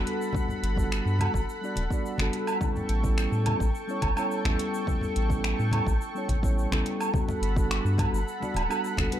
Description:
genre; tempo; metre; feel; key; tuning
sunset chillout; 106 BPM; 4/4; straight; G lydian; A4 = 440 Hz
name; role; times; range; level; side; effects
mellow tine electric piano; accompaniment; 0.0-9.2 s; G3 to D5; -32 LUFS; moving between left 4 dB and right 4 dB; auto-pan, tape echo
lush unison pad; sustained chords; 0.0-9.2 s; A4 to C#6; -34 LUFS; right 1 dB; chorus
round analog bass; bass; 0.0-9.1 s; D1 to A2; -27 LUFS; equal; none
deep house drum kit; drums; 0.1-9.2 s; finger snaps, hi-hat, shaker, woodblock; -33 LUFS; right 2 dB; overdrive
electronic kick drum; drums; 0.3-9.1 s; none; -29 LUFS; equal; overdrive
congas; percussion; 0.3-9.1 s; none; -35 LUFS; left 1 dB; none
room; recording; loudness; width
light reverb; dark, warm production; -25 LUFS; side -11 dB against mid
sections
0.0-7.1 A section; 7.1-9.2 B section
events
filter sweep on tine electric piano 0.0-7.1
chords
0.0 Gmaj9; 2.6 A7; 7.1 Gmaj9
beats
| 0.34 0.91 1.48 2.04 | 2.61 3.17 3.74 4.31 | 4.87 5.44 6.00 6.57 | 7.14 7.70 8.27 8.83

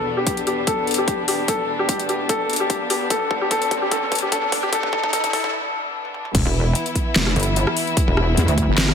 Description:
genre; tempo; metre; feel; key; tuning
heavy wobble dubstep; 148 BPM; 4/4; half-time; E minor; A4 = 440 Hz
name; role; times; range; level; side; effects
warm baby grand piano; melody; 0.0-5.5 s; G4 to A4; -22 LUFS; left 2 dB; digital delay
dark chamber string section; sustained chords; 0.0-8.9 s; E2 to E4; -26 LUFS; left 2 dB; sidechain pumping
riser; sound effects; 0.9-5.5 s; none; -30 LUFS; equal; none
dubstep drum kit; drums; 0.3-8.9 s; crash cymbal, handclaps, hi-hat, rim click, snare drum, toms; -23 LUFS; left 2 dB; overdrive, high-pass filter on hats, high-pass filter on snare, high-pass filter on toms, high-pass filter on cymbals, high-pass filter on room
electronic kick drum; drums; 0.3-8.7 s; none; -24 LUFS; equal; overdrive
wobble bass; bass; 6.3-8.9 s; E1 to E2; -19 LUFS; equal; chorus, overdrive
pulsing pluck wobble bass; bass; 6.5-8.7 s; E1 to D2; -19 LUFS; equal; chorus, overdrive
room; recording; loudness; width
moderate lush hall reverb, RT60 2.7 s; high-pass filter; -18 LUFS; side -7 dB against mid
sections
0.0-6.3 A section; 6.3-8.9 B section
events
build-up 0.0-6.3; drum fill 0.0-5.5, 6.0-6.3; riser 0.9-5.5; break 5.5-6.3; drop 6.3-8.9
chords
0.0 E5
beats
0.27 0.67 1.08 | 1.48 1.89 2.29 2.70 | 3.10 3.51 3.92 4.32 | 4.72 5.13 5.54 5.94 | 6.35 6.75 7.16 7.56 | 7.97 8.37 8.78

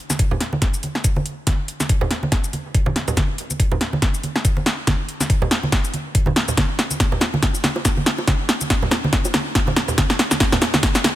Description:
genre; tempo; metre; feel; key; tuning
dubstep; 141 BPM; 4/4; swing 57% on 16ths, half-time; none; none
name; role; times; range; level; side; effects
deep house drum kit; drums; 0.1-11.1 s; hi-hat, shaker, snare drum; -20 LUFS; equal; overdrive, small room ambience
congas and bongos; percussion; 0.1-11.1 s; none; -25 LUFS; right 2 dB; dub echo
electronic kick drum; drums; 0.2-10.9 s; none; -20 LUFS; equal; small room ambience
room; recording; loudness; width
light reverb; none; -17 LUFS; side -14 dB against mid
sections
0.0-11.2 A section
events
build-up 0.0-11.2; drum fill 0.0-11.2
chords
none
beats
0.19 0.62 1.04 | 1.47 1.90 2.32 2.75 | 3.17 3.60 4.02 4.45 | 4.87 5.30 5.72 6.15 | 6.58 7.00 7.43 7.85 | 8.28 8.70 9.13 9.55 | 9.98 10.40 10.83

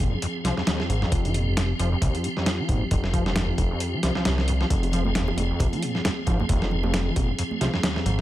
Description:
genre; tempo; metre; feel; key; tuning
breakbeat, breaks; 134 BPM; 4/4; swing 56% on 16ths; F minor; A4 = 440 Hz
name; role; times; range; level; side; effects
tonewheel organ; sustained chords; 0.0-8.2 s; F3 to Ab4; -30 LUFS; equal; chorus vibrato, fast rotary speaker, sidechain pumping
overdriven acid bass; riff; 0.0-8.2 s; Eb2 to F3; -29 LUFS; equal; distortion, analog chorus, tape echo
fat analog bass; bass; 0.0-8.2 s; F1 to C2; -25 LUFS; equal; none
dusty soul sampler-style drum kit; drums; 0.0-8.2 s; hi-hat, kick drum, snare drum; -26 LUFS; equal; none
bongos and congas; percussion; 4.8-8.2 s; none; -33 LUFS; right 5 dB; none
room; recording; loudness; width
digital ambience; none; -22 LUFS; side -14 dB against mid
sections
0.0-8.2 A section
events
none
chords
0.0 Fm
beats
0.22 0.67 | 1.12 1.57 2.01 2.46 | 2.91 3.36 3.81 4.25 | 4.70 5.15 5.60 6.04 | 6.49 6.94 7.39 7.83

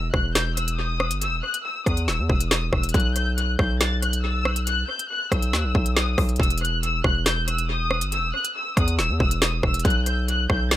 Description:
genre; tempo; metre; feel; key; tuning
hip hop, drill; 139 BPM; 4/4; half-time; unclear; A4 = 438 Hz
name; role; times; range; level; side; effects
warm studio violin section; melody; 0.0-10.8 s; D#6 to A6; -26 LUFS; left 2 dB; low-pass filter, tape echo
distorted 808-style bass; bass; 0.0-10.8 s; D#1 to E2; -24 LUFS; equal; distortion
drill drum kit; drums; 0.1-10.8 s; hi-hat, kick drum, rim click, snare drum; -23 LUFS; equal; tape echo
room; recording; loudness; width
little or no reverb; echo-heavy mix; -20 LUFS; side -13 dB against mid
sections
0.0-10.8 A section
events
none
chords
0.0 N.C.; 2.9 B5; 6.4 N.C.; 9.8 B5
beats
0.35 0.78 | 1.22 1.65 2.08 2.51 | 2.94 3.37 3.81 4.24 | 4.67 5.10 5.53 5.96 | 6.40 6.83 7.26 7.69 | 8.12 8.55 8.99 9.42 | 9.85 10.28 10.71

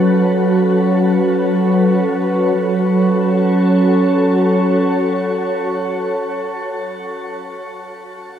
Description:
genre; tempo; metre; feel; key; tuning
ambient; free time; none; none; F# minor; A4 = 440 Hz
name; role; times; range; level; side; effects
glassy FM pad; sustained chords; 0.0-6.9 s; F#3 to C#5; -16 LUFS; equal; ensemble chorus, built-in reverb
analog drone; drone; 0.0-6.5 s; F#3 to C#4; -18 LUFS; right 1 dB; chorus
room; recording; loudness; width
wet shimmer reverb, RT60 8.8 s; cassette tape; -13 LUFS; side -9 dB against mid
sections
0.0-2.6 A section; 2.6-7.4 B section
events
none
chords
0.0 F#m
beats
free time

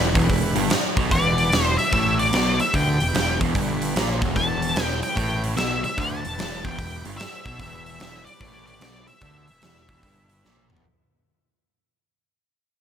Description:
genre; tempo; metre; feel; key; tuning
blues rock power trio and southern rock; 148 BPM; 4/4; swing 65% on 8ths; E minor; A4 = 440 Hz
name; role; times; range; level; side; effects
overdriven tonewheel organ; sustained chords; 0.0-10.4 s; B3 to D5; -35 LUFS; right 2 dB; slow rotary speaker
fuzz guitar; riff; 0.0-10.8 s; E2 to D3; -26 LUFS; equal; distortion
fuzz picked electric bass; bass; 0.0-10.8 s; E1 to D2; -27 LUFS; equal; overdrive
big rock drum kit; drums; 0.2-10.8 s; hi-hat, kick drum, snare drum, toms; -25 LUFS; right 1 dB; none
octave-fuzz lead guitar; melody; 1.1-10.7 s; D5 to A5; -25 LUFS; left 1 dB; distortion
room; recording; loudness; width
little or no reverb; none; -19 LUFS; side -8 dB against mid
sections
0.0-10.8 A section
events
fade-out 0.0-10.8; drum fill 10.4-10.8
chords
0.0 Em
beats
0.30 0.70 | 1.11 1.52 1.92 2.33 | 2.74 3.14 3.55 3.95 | 4.36 4.76 5.17 5.58 | 5.98 6.39 6.79 7.20 | 7.60 8.01 8.41 8.82 | 9.22 9.63 10.04 10.44

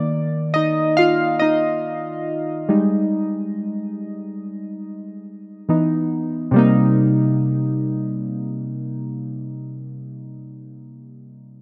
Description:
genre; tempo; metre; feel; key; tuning
R&B; 70 BPM; 4/4; swing 54% on 16ths; C minor; A4 = 441 Hz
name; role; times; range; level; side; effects
warm analog keys; accompaniment; 0.0-11.6 s; C3 to F5; -21 LUFS; equal; chorus
room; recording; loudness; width
light reverb; dark, warm production; -20 LUFS; mono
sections
0.0-6.5 A section; 6.5-10.0 B section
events
synth keys solo 0.0-6.5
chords
0.0 Bbadd11/Eb; 2.7 Ebadd11/G; 5.7 Badd11/E; 6.5 Cm7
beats
0.54 1.40 2.26 | 3.12 3.97 4.83 5.69 | 6.54 7.40 8.26 9.12

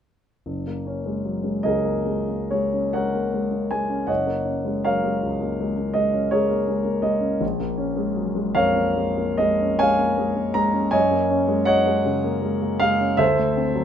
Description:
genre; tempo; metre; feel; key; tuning
classical, impressionist solo piano; 45-56 BPM (dotted quarters); 9/8; rubato; F# major; A4 = 440 Hz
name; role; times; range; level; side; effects
warm concert grand piano; solo; 0.5-13.8 s; F#1 to A#5; -20 LUFS; equal; none
room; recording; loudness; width
light reverb; minimal, uncompressed stereo recording; -20 LUFS; side -8 dB against mid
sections
0.5-13.8 A section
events
none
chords
0.5 F#add9; 4.1 D#m11/F#; 7.4 A#m7; 10.9 F#69; 13.2 D9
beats
| 0.47 1.64 2.94 | 4.09 5.24 6.34 | 7.42 8.57 9.81 | 10.94 12.06 13.21

